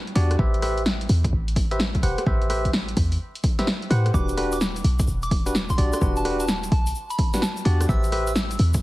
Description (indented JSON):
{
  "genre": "UK garage, two-step garage",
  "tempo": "128 BPM",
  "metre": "4/4",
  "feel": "swing 65% on 16ths",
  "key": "unclear",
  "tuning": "A4 = 437 Hz",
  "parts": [
    { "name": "punchy analog drum machine", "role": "drums", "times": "0.1-8.8 s", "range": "hi-hat, rim click, snare drum", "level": "-27 LUFS", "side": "equal", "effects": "overdrive" },
    { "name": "bell-like tine electric piano", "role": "stabs", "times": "0.2-8.3 s", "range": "D4 to F#5", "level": "-27 LUFS", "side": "equal", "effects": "dub echo" },
    { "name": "short 808-style bass", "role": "bass", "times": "0.2-8.8 s", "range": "E1 to A2", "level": "-23 LUFS", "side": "equal", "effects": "none" },
    { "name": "electronic kick drum", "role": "drums", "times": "0.4-8.8 s", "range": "none", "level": "-24 LUFS", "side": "equal", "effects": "overdrive" },
    { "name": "soft synth bell", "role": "melody", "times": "4.1-8.5 s", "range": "A5 to E6", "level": "-32 LUFS", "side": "right 1 dB", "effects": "chorus, tape echo" },
    { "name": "tube shaker", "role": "percussion", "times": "4.1-8.8 s", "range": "none", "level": "-38 LUFS", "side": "left 2 dB", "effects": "none" }
  ],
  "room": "digital ambience",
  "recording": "heavily compressed radio sound, vinyl crackle",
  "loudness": "-20 LUFS",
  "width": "side -18 dB against mid",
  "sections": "0.0-8.8 A section",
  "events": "none",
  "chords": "0.4 Am9; 4.1 Em9; 7.9 Am9"
}